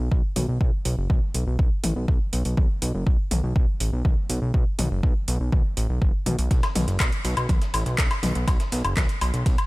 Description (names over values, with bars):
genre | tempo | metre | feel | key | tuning
melodic techno | 122 BPM | 4/4 | straight | unclear | A4 = 440 Hz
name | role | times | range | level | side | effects
fat analog bass | bass | 0.0-9.6 s | F#1 to B1 | -25 LUFS | equal | sidechain pumping
electronic kick drum | drums | 0.1-9.6 s | none | -22 LUFS | equal | overdrive
deep house drum kit | drums | 0.4-9.7 s | handclaps, hi-hat, toms, woodblock | -28 LUFS | left 2 dB | overdrive
breakbeat sampler-style drum kit | drums | 6.5-9.6 s | hi-hat, ride cymbal, snare drum | -37 LUFS | right 1 dB | sidechain pumping on cymbals, high-pass filter on cymbals, high-pass filter on snare, sidechain pumping on hats, high-pass filter on hats, high-pass filter on room
room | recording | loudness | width
little or no reverb | none | -21 LUFS | side -21 dB against mid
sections
0.0-9.7 A section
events
none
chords
none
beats
0.12 | 0.61 1.10 1.59 2.08 | 2.57 3.07 3.56 4.05 | 4.54 5.03 5.53 6.02 | 6.51 7.00 7.49 7.98 | 8.48 8.97 9.46